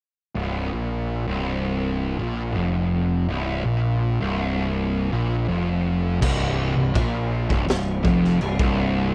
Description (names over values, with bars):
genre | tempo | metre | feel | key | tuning
stoner and doom metal | 82 BPM | 4/4 | straight | unclear | A4 = 440 Hz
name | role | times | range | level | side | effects
fuzz guitar | riff | 0.4-9.1 s | C2 to Bb2 | -26 LUFS | equal | distortion
fuzz picked electric bass | bass | 0.4-9.1 s | C1 to Bb1 | -28 LUFS | equal | overdrive
raw garage drum kit | drums | 6.2-8.8 s | crash cymbal, kick drum, snare drum | -27 LUFS | equal | none
room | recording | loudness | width
little or no reverb | none | -23 LUFS | mono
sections
0.4-6.2 A section; 6.2-9.1 B section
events
none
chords
0.4 C7sus4